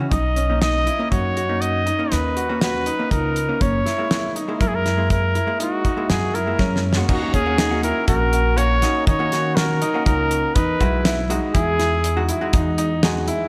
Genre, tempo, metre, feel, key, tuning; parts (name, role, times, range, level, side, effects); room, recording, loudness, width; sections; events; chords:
progressive instrumental, band music in an uneven meter; 121 BPM; 7/4; straight; A4 = 440 Hz
vintage hollow-body jazz guitar; accompaniment; 0.0-13.5 s; E3 to G#4; -30 LUFS; equal; slapback echo
clear concert grand piano; arpeggios; 0.0-13.5 s; C#4 to F#4; -28 LUFS; equal; slapback echo
warm trumpet; melody; 0.1-12.3 s; F#4 to D#5; -25 LUFS; equal; slapback echo, analog delay
upright bass; bass; 0.1-13.3 s; F#1 to D#3; -25 LUFS; equal
damped 70s drum kit; drums; 0.1-13.4 s; crash cymbal, hi-hat, kick drum, snare drum; -24 LUFS; equal
moderate concert hall reverb, RT60 2.2 s; big arena sound; -20 LUFS; mono
0.0-7.1 A section; 7.1-13.5 B section
drum fill 6.6-7.1
0.1 Bmaj7; 3.6 F#7; 7.1 D#m7; 10.6 Emaj7